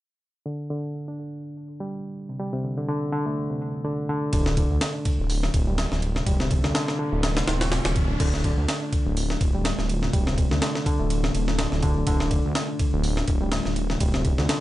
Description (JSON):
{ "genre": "breakbeat, breaks", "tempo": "124 BPM", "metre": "4/4", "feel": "swing 56% on 16ths", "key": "D minor", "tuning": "A4 = 440 Hz", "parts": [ { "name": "deep dark ambient pad", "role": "sustained chords", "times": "4.2-14.6 s", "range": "A3 to F4", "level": "-36 LUFS", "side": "left 1 dB", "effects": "none" }, { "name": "reed electric piano", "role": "riff", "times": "0.5-14.6 s", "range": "C3 to D4", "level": "-28 LUFS", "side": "equal", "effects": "tube saturation, low-pass filter, dub echo" }, { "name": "detuned saw bass", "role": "bass", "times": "4.3-14.5 s", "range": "D1 to D2", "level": "-26 LUFS", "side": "equal", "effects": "none" }, { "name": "breakbeat sampler-style drum kit", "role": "drums", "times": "4.3-14.6 s", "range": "crash cymbal, hi-hat, kick drum, ride cymbal, snare drum", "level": "-24 LUFS", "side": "equal", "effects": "none" }, { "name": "riser", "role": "sound effects", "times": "6.1-8.2 s", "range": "none", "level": "-38 LUFS", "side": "equal", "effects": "none" } ], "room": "light reverb", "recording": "nothing above 10.5 kHz", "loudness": "-22 LUFS", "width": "side -15 dB against mid", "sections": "0.5-8.2 A section; 8.2-14.6 B section", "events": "filter sweep on reed electric piano 0.5-8.2; riser 6.1-8.2", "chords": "0.5 Dm" }